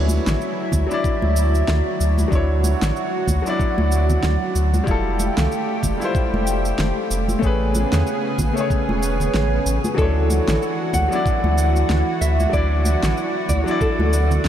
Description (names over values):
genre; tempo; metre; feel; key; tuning
sunset chillout; 94 BPM; 4/4; swing 57% on 16ths; unclear; A4 = 440 Hz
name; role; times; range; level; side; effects
warm grand piano; accompaniment; 0.0-14.5 s; F#3 to D5; -24 LUFS; moving between left 4 dB and right 2 dB; auto-pan, vintage 12-bit sampler grit, ping-pong delay
lush unison pad; sustained chords; 0.0-14.5 s; C#3 to G#4; -25 LUFS; right 1 dB; chorus
warm sub bass; bass; 0.0-14.5 s; E1 to E2; -20 LUFS; equal; none
electronic cabasa and snare drum; drums; 0.1-14.5 s; none; -29 LUFS; right 1 dB; overdrive
congas; percussion; 0.1-14.5 s; none; -29 LUFS; equal; none
electronic kick drum; drums; 0.7-14.0 s; none; -22 LUFS; equal; none
nylon-string guitar; melody; 10.0-14.5 s; A4 to F#5; -24 LUFS; equal; ping-pong delay
room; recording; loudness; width
moderate huge ambient reverb, RT60 8.7 s; dreamy mix soaked in reverb; -17 LUFS; side -10 dB against mid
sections
0.0-14.5 A section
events
none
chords
0.0 Dmaj9; 4.9 Fmaj9; 7.4 Amaj9; 10.0 Dmaj9